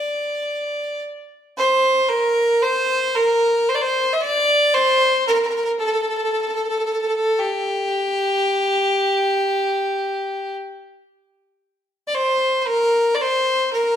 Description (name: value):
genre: arabic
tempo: 113 BPM (eighths)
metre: 10/8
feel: straight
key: D maqam bayati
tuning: A4 = 440 Hz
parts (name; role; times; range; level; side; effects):
- clear fiddle; solo; 0.0-14.0 s; G4 to E5-47c; -17 LUFS; equal; slapback echo
room: moderate recital hall reverb, RT60 1.4 s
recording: none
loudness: -17 LUFS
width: side -9 dB against mid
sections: 0.0-2.1 A section; 2.1-14.0 B section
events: none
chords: none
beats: 0.49 1.02 1.55 | 2.08 2.61 3.14 3.67 4.20 4.73 5.26 5.79 6.31 6.84 | 7.37 7.90 8.43 8.96 9.49 10.02 10.55 11.08 11.61 12.13 | 12.66 13.19 13.72